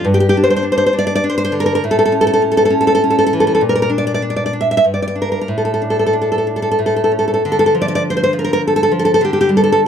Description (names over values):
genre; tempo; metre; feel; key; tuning
romantic piece for solo classical guitar; 91-104 BPM; 3/4; rubato; D minor; A4 = 440 Hz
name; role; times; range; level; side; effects
nylon-string guitar; solo; 0.0-9.9 s; G2 to E5; -12 LUFS; equal; none
room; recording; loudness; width
studio reverb; dry, close 1970s-style studio recording; -12 LUFS; side -8 dB against mid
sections
0.0-7.4 A section; 7.4-9.9 B section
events
none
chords
0.1 G5; 1.8 A; 3.6 Bb; 4.8 G5; 5.5 Asus4; 6.8 A; 7.4 Dm; 9.2 Dsus4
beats
| 0.06 0.64 1.23 | 1.82 2.42 3.02 | 3.60 4.20 4.82 | 5.47 6.12 6.78 | 7.42 8.02 8.61 | 9.21 9.80